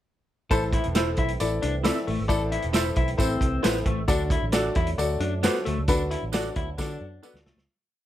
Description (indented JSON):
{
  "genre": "uptempo 1960s-style soul",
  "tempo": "134 BPM",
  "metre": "4/4",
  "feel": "straight",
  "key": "unclear",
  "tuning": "A4 = 440 Hz",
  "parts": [
    { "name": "clear upright piano", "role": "accompaniment", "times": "0.5-7.5 s", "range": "A2 to D5", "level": "-28 LUFS", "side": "left 3 dB", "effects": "none" },
    { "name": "tonewheel organ", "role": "sustained chords", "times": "0.5-7.7 s", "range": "E3 to D4", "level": "-37 LUFS", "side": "right 3 dB", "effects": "fast rotary speaker, overdrive" },
    { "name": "electric guitar through a small old amp", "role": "riff", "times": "0.5-7.6 s", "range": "A3 to A4", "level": "-31 LUFS", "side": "left 4 dB", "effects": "none" },
    { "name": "vintage muted fingered electric bass", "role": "bass", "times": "0.5-7.7 s", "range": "E1 to D3", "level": "-29 LUFS", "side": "right 1 dB", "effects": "none" },
    { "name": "vintage drum kit", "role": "drums", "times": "0.5-7.7 s", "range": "hi-hat, kick drum, snare drum", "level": "-27 LUFS", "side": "right 1 dB", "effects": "none" },
    { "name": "tambourine", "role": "percussion", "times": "0.5-7.3 s", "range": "none", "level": "-36 LUFS", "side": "right 8 dB", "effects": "none" },
    { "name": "electric guitar through a small old amp", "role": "stabs", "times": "1.0-7.4 s", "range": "D4 to E5", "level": "-31 LUFS", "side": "right 11 dB", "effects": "none" }
  ],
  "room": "little or no reverb",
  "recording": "none",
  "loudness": "-22 LUFS",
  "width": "side -12 dB against mid",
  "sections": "0.5-7.7 pre-chorus",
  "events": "fade-out 5.9-7.7; drum fill 6.8-7.7",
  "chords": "0.5 Am; 4.1 D",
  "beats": "| 0.51 0.95 1.40 1.85 | 2.29 2.74 3.19 3.64 | 4.09 4.54 4.99 5.44 | 5.88 6.33 6.78 7.23"
}